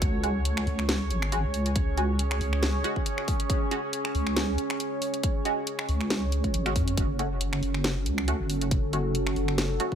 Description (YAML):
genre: deep dubstep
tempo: 138 BPM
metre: 4/4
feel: swing 55% on 16ths, half-time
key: unclear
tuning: A4 = 440 Hz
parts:
  - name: deep dark ambient pad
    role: sustained chords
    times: 0.0-9.9 s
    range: C#4 to C#5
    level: -31 LUFS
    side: right 2 dB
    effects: chorus, built-in reverb
  - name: deep soft wobble bass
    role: bass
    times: 0.0-9.8 s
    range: F#1 to F#2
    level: -27 LUFS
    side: equal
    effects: chorus, tube saturation
  - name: electronic kick drum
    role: drums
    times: 0.0-9.9 s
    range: none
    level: -28 LUFS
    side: equal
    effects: none
  - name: garage drum kit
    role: drums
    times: 0.0-9.9 s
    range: finger snaps, hi-hat, snare drum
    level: -31 LUFS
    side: equal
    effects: none
  - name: filtered dub chord stab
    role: stabs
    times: 0.2-9.9 s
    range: G#3 to F#4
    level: -34 LUFS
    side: right 2 dB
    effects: phaser, wide subtle chorus, dub echo
room: little or no reverb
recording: none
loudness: -25 LUFS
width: side -8 dB against mid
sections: 0.0-9.9 A section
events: none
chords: 0.0 C#sus4; 7.0 F#m